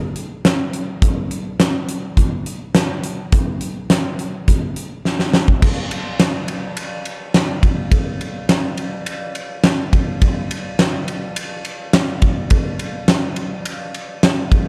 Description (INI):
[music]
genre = rock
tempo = 104 BPM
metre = 4/4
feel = straight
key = none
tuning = none
[part]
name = huge arena drum kit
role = drums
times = 0.2-14.6 s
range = crash cymbal, hi-hat, kick drum, ride cymbal, snare drum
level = -19 LUFS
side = equal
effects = none
[sound]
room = light reverb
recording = dark, warm production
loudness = -19 LUFS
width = mono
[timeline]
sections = 0.0-5.6 A section; 5.6-14.7 B section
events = drum fill 5.0-5.6; build-up 5.6-14.7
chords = none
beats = 0.45 | 1.02 1.60 2.17 2.75 | 3.32 3.89 4.47 5.04 | 5.62 6.19 6.77 7.34 | 7.92 8.49 9.06 9.64 | 10.21 10.79 11.36 11.93 | 12.51 13.08 13.65 14.23